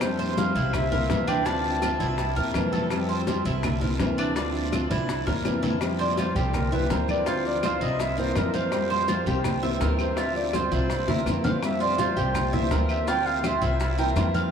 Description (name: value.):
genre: latin, Cuban son and guajira.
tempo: 165 BPM.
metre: 4/4.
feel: straight.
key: unclear.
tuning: A4 = 440 Hz.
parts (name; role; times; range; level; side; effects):
warm clarinet; melody; 0.0-2.5, 6.0-14.1 s; A4 to A5; -30 LUFS; right 1 dB; none.
nylon-string guitar; accompaniment; 0.0-14.5 s; C3 to G4; -29 LUFS; left 2 dB; none.
Cuban tres; arpeggios; 0.0-14.5 s; D4 to F5; -29 LUFS; right 3 dB; none.
upright bass; bass; 0.0-14.5 s; C2 to F2; -29 LUFS; equal; none.
bongos; percussion; 0.0-14.5 s; none; -34 LUFS; left 5 dB; none.
claves; percussion; 0.0-14.3 s; none; -43 LUFS; left 2 dB; none.
congas; percussion; 0.0-14.5 s; none; -33 LUFS; equal; none.
guiro; percussion; 0.0-14.5 s; none; -42 LUFS; right 6 dB; none.
maracas; percussion; 0.0-14.5 s; none; -46 LUFS; left 8 dB; none.
room: wet huge ambient reverb, RT60 7.6 s.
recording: in a vast, echoing space.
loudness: -22 LUFS.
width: side -7 dB against mid.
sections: 0.0-5.8 A section; 5.8-14.5 B section.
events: drum fill 4.9-5.8, 10.5-11.6; clarinet solo 5.8-14.5.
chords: 0.0 Fadd9; 0.7 C7; 1.5 Dm7; 2.2 C7; 2.9 Fadd9; 3.6 C7; 4.4 Dm7; 5.1 C7; 5.8 Fsus2; 6.5 C7; 7.3 Dm7; 8.0 C7; 8.7 Fsus2; 9.4 C7; 10.2 Dm7; 10.9 C7; 11.6 Fsus2; 12.3 C7; 13.1 Dm7; 13.8 C7.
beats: | 0.01 0.38 0.74 1.10 | 1.46 1.82 2.19 2.55 | 2.91 3.27 3.64 4.00 | 4.36 4.72 5.09 5.45 | 5.81 6.18 6.54 6.90 | 7.27 7.63 7.99 8.36 | 8.72 9.08 9.45 9.81 | 10.17 10.54 10.90 11.26 | 11.62 11.99 12.35 12.71 | 13.08 13.44 13.80 14.16.